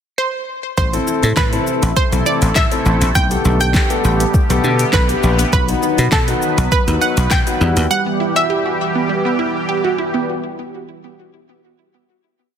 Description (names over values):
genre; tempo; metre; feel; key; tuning
dance-pop; 101 BPM; 4/4; straight; E minor; A4 = 440 Hz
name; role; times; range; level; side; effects
analog pluck; melody; 0.2-9.9 s; A4 to G5; -20 LUFS; right 2 dB; chorus, ping-pong delay
sweeping resonant pad; sustained chords; 0.8-10.3 s; C3 to B4; -22 LUFS; right 2 dB; chorus, sidechain pumping
wide unison pluck; arpeggios; 0.8-10.3 s; F#3 to A5; -24 LUFS; right 3 dB; sidechain pumping, ping-pong delay
dry thumbed slap bass; bass; 0.8-7.9 s; A1 to B2; -16 LUFS; equal; sidechain pumping
smooth R&B drum kit; drums; 0.8-7.9 s; handclaps, hi-hat, kick drum, shaker, snare drum; -18 LUFS; equal; none
warm concert grand piano; accompaniment; 0.9-7.8 s; G3 to B4; -21 LUFS; left 5 dB; sidechain pumping
room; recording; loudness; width
light reverb, digital ambience; dense, heavily limited modern master; -14 LUFS; side -8 dB against mid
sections
0.0-0.8 pickup bar; 0.8-10.3 chorus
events
none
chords
0.0 N.C.; 0.8 Am; 3.2 Gadd9; 5.5 B; 7.6 Emadd9